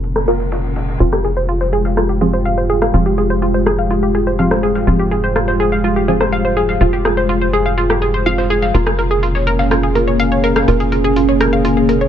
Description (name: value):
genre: melodic techno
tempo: 124 BPM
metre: 4/4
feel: straight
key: F minor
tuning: A4 = 440 Hz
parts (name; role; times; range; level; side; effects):
- dark analog pad; sustained chords; 0.0-12.1 s; Ab3 to Ab4; -18 LUFS; right 1 dB; chorus, phaser
- tight sequencer bass; bass; 0.0-12.1 s; F1; -19 LUFS; equal; none
- dusty soul sampler-style drum kit; drums; 0.0-12.0 s; hi-hat, snare drum; -35 LUFS; equal; high-pass filter on hats, low-pass filter on hats, high-pass filter on snare, low-pass filter on snare
- reverse cymbal; sound effects; 0.2-1.0 s; none; -38 LUFS; left 4 dB; none
- electronic rim click; drums; 0.2-11.5 s; none; -18 LUFS; equal; low-pass filter on snare, low-pass filter on room
- filtered dub chord stab; stabs; 0.3-10.9 s; F3 to Bb4; -22 LUFS; right 2 dB; phaser, lush chorus, digital delay
- analog pluck; arpeggios; 1.0-12.1 s; F4 to F5; -17 LUFS; equal; chorus, digital delay
room: digital ambience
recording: low-pass filter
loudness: -13 LUFS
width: side -9 dB against mid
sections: 0.0-12.1 A section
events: filter sweep on analog synth pad 0.0-12.1; filter sweep 0.0-12.1; reverse cymbal 0.2-1.0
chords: 0.0 Bbm7/F; 1.0 Fmadd9; 8.7 Bbm7/F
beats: 0.04 0.52 | 1.00 1.49 1.97 2.45 | 2.94 3.42 3.91 4.39 | 4.87 5.36 5.84 6.33 | 6.81 7.29 7.78 8.26 | 8.74 9.23 9.71 10.20 | 10.68 11.16 11.65